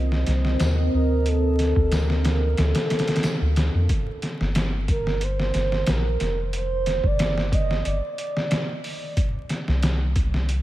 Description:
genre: trip hop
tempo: 91 BPM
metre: 4/4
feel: swing 53% on 16ths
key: G minor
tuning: A4 = 439 Hz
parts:
  - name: deep dark ambient pad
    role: sustained chords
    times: 0.0-3.9 s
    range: C4 to F5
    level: -29 LUFS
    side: equal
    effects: chorus, built-in reverb
  - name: soft dub sub bass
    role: bass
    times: 0.0-10.6 s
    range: F1 to F2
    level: -23 LUFS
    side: equal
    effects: none
  - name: trip hop sampler-style drum kit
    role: drums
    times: 0.1-10.6 s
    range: hi-hat, kick drum, snare drum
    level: -24 LUFS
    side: equal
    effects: overdrive
  - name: tambourine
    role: percussion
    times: 0.6-3.4 s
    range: none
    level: -46 LUFS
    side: left 1 dB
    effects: none
  - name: pure breathy sine lead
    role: melody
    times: 0.9-8.8 s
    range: A4 to Eb5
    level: -28 LUFS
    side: right 2 dB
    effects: wide subtle chorus, tape echo
room: light reverb, digital ambience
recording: vinyl crackle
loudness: -20 LUFS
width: side -15 dB against mid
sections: 0.0-3.9 A section; 3.9-10.6 A section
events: none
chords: 0.0 Cm7; 1.3 Dm7; 3.9 Gm7; 9.2 N.C.

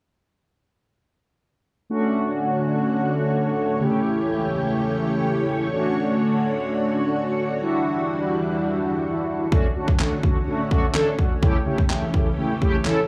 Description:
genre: dance-pop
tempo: 126 BPM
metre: 4/4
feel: straight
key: D major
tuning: A4 = 440 Hz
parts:
  - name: mellow synth brass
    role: accompaniment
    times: 1.9-13.0 s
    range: C#3 to A4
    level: -24 LUFS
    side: equal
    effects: chorus, sidechain pumping, plate reverb, slapback echo
  - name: string machine, full ensemble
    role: sustained chords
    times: 1.9-13.1 s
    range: C#2 to C#5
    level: -31 LUFS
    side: equal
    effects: ensemble chorus, sidechain pumping, plate reverb
  - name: pop drum kit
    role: drums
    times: 9.5-13.0 s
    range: handclaps, kick drum, snare drum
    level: -23 LUFS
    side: equal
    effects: none
room: wet club reverb, RT60 0.5 s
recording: live gig heard through the venue's PA, club reverb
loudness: -22 LUFS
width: mono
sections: 1.9-9.5 A section; 9.5-13.1 B section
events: none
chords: 1.9 Dmaj7; 3.8 A7/C#; 5.7 Dmaj7; 7.6 Em9; 9.5 Dmaj7; 11.4 A7/C#

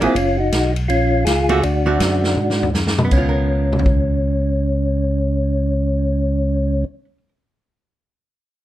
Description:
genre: soul jazz organ trio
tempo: 162 BPM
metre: 4/4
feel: swing 63% on 8ths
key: Db mixolydian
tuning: A4 = 439 Hz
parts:
  - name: percussive tonewheel organ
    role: melody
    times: 0.0-6.8 s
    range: C4 to Ab4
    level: -20 LUFS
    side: equal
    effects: slow rotary speaker
  - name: archtop guitar, miked and amplified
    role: accompaniment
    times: 0.0-7.3 s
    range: D3 to Bb4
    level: -22 LUFS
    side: right 3 dB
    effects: none
  - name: tonewheel organ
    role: bass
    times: 0.0-6.8 s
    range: Gb1 to Ab2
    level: -19 LUFS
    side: equal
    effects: stopped rotary speaker
  - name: vintage drum kit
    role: drums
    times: 0.0-4.0 s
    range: crash cymbal, hi-hat, kick drum, ride cymbal, snare drum, toms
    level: -21 LUFS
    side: equal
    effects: none
room: little or no reverb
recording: minimal, uncompressed stereo recording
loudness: -16 LUFS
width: side -14 dB against mid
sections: 0.0-3.1 A section; 3.1-6.1 B section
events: drum fill 2.4-3.1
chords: 0.2 Gbmaj9; 1.6 D7; 3.1 Db6

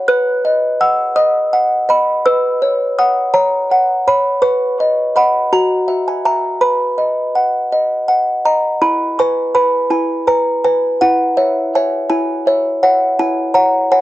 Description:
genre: classical, lullaby for music box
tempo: 55 BPM (dotted quarters)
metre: 6/8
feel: straight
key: B major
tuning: A4 = 440 Hz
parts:
  - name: music box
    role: solo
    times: 0.0-14.0 s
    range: E4 to F#6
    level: -12 LUFS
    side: equal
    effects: cassette tape
room: light reverb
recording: home recording on cassette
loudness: -12 LUFS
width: side -16 dB against mid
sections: 0.0-8.8 A section; 8.8-14.0 B section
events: none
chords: 0.1 B; 2.3 F#7/B; 4.4 B; 5.5 F#9; 6.6 B; 8.8 E; 11.0 C#m/E; 13.2 F#5/E

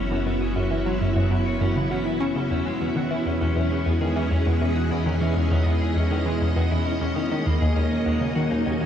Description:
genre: ambient, sequencer-driven space music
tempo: 100 BPM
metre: 4/4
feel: straight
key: unclear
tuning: A4 = 440 Hz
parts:
  - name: string machine, full ensemble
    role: sustained chords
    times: 0.0-8.9 s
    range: A#3 to E5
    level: -26 LUFS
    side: equal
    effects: ensemble chorus
  - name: electric guitar at the edge of break-up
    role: arpeggios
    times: 0.0-8.9 s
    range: G#3 to C#5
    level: -31 LUFS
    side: left 4 dB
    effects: auto-pan, tape echo
  - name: analog pluck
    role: riff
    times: 0.0-8.9 s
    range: D#2 to C#4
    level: -24 LUFS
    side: equal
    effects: chorus, phaser, tape echo
  - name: analog drone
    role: bass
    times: 0.0-8.9 s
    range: F#1 to E2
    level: -29 LUFS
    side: equal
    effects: chorus
room: moderate huge ambient reverb, RT60 7.6 s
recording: dark, warm production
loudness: -21 LUFS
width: side -9 dB against mid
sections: 0.0-8.9 A section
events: none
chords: 0.0 F#7sus4; 2.5 Emaj7; 7.3 D#m7

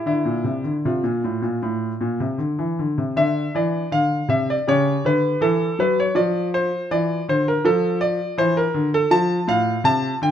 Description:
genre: classical, baroque-style suite movement for grand piano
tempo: 80 BPM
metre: 4/4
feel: uneven beats, rubato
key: D minor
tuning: A4 = 445 Hz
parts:
  - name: clear grand piano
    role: solo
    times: 0.0-10.3 s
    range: A2 to A5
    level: -18 LUFS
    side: equal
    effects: none
room: light reverb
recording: close, detailed microphones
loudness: -18 LUFS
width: side -9 dB against mid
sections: 0.0-3.2 A section; 3.2-10.3 B section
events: none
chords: 0.1 Dm; 3.2 Cadd9; 4.7 C#dim; 6.2 Dm; 9.1 F

